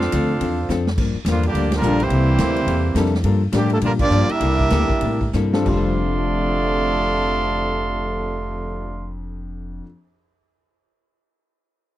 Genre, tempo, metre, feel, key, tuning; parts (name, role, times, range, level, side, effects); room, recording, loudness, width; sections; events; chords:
jazz, big band swing; 180-212 BPM; 4/4; swing 61% on 8ths; F major; A4 = 439 Hz
clear trumpet section; melody; 0.0-9.1 s; G3 to C6; -23 LUFS; right 2 dB
clear trombone section; second line; 0.0-9.1 s; F2 to F4; -24 LUFS; right 3 dB
archtop guitar, miked and amplified; accompaniment; 0.0-9.9 s; G2 to A4; -27 LUFS; left 7 dB
upright bass; bass; 0.0-9.8 s; F1 to Bb2; -22 LUFS; equal
swinging big-band drum kit; drums; 0.0-8.2 s; crash cymbal, cymbal swell, hi-hat, kick drum, ride cymbal, snare drum; -26 LUFS; equal
warm concert grand piano; accompaniment; 1.8-9.8 s; F2 to A4; -25 LUFS; left 3 dB
little or no reverb; dry, close 1970s-style studio recording; -17 LUFS; side -14 dB against mid
1.0-5.7 A section; 5.7-8.3 B section
drum fill 0.7, 5.3-5.7; band accent 1.7, 4.0; slowing down 3.2-5.7
0.0 F6; 1.0 Gm7; 2.1 C13; 3.2 Gm7; 4.4 C13; 5.7 F6